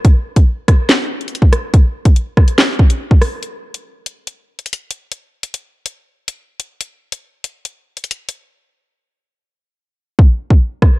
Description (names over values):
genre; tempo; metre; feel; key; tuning
hip hop; 142 BPM; 4/4; half-time; none; none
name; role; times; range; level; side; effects
drill drum kit; drums; 0.0-10.9 s; handclaps, hi-hat, kick drum, rim click, snare drum; -11 LUFS; equal; none
room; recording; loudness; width
digital ambience; dark, warm production; -11 LUFS; side -19 dB against mid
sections
0.0-3.4 A section; 3.4-10.2 B section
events
drums muted 8.5-10.2; hi-hats muted 10.2-11.0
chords
none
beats
| 0.05 0.47 0.89 1.31 | 1.74 2.16 2.58 3.00 | 3.43 3.85 4.27 4.69 | 5.12 5.54 5.96 6.38 | 6.81 7.23 7.65 8.07 | 8.50 8.92 9.34 9.77 | 10.19 10.61